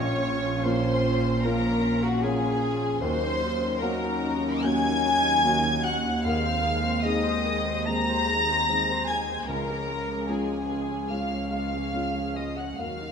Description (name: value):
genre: cinematic, emotional film score for orchestra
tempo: 75 BPM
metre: 4/4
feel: rubato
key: unclear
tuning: A4 = 438 Hz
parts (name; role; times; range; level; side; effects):
- warm chamber violin section; melody; 0.0-13.1 s; Gb5 to Bb6; -32 LUFS; left 3 dB; none
- rich studio violin section; second line; 0.0-13.1 s; Gb4 to Bb5; -31 LUFS; left 1 dB; none
- warm clarinet; second line; 0.0-13.1 s; Gb4 to Bb5; -31 LUFS; left 1 dB; none
- dark baby grand piano; accompaniment; 0.0-13.1 s; Bb1 to Ab4; -33 LUFS; left 2 dB; none
- dark symphonic viola section; accompaniment; 0.0-13.1 s; Gb3 to C5; -36 LUFS; right 1 dB; none
- mellow French horn section; sustained chords; 0.0-13.1 s; F3 to Db4; -33 LUFS; left 2 dB; none
- rich symphonic cello section; bass; 0.0-13.1 s; Db2 to Bb2; -32 LUFS; right 1 dB; none
- warm symphonic double bass section; bass; 0.0-13.1 s; Bb1 to Eb2; -33 LUFS; right 5 dB; none
room: moderate scoring stage reverb, RT60 1.5 s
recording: minimal, uncompressed stereo recording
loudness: -23 LUFS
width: side -6 dB against mid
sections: 0.0-13.1 A section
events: none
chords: 0.0 Bbm; 3.0 Ebm7; 6.2 Ab/Eb; 9.5 Db